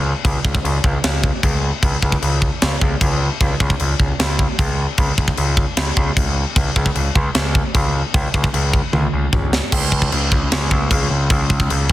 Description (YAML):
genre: heavy metal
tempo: 152 BPM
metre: 4/4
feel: straight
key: unclear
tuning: A4 = 441 Hz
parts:
  - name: growling picked electric bass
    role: bass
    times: 0.0-11.9 s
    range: C#2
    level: -19 LUFS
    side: equal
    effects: overdrive
  - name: tight metal drum kit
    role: drums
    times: 0.2-11.9 s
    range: crash cymbal, kick drum, snare drum, toms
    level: -18 LUFS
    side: equal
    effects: soft clipping on snare
room: little or no reverb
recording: dense, heavily limited modern master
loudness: -15 LUFS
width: side -15 dB against mid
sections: 0.0-9.7 A section; 9.7-11.9 B section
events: drum fill 8.9-9.7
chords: none